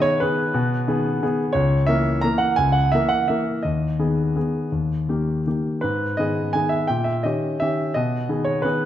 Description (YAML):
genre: classical, piano waltz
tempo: 159-185 BPM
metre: 3/4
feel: rubato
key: G# minor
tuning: A4 = 439 Hz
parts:
  - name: warm grand piano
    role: solo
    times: 0.0-8.9 s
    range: C#2 to A#5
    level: -19 LUFS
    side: equal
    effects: none
room: wet recital hall reverb, RT60 1.7 s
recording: dark, warm production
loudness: -19 LUFS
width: side -11 dB against mid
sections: 0.0-8.9 A section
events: none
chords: 0.0 G#m; 1.6 A#dim/C#; 3.6 G#m/D#; 4.7 D#; 5.8 G#m; 6.9 D#7/A#; 7.9 G#m/B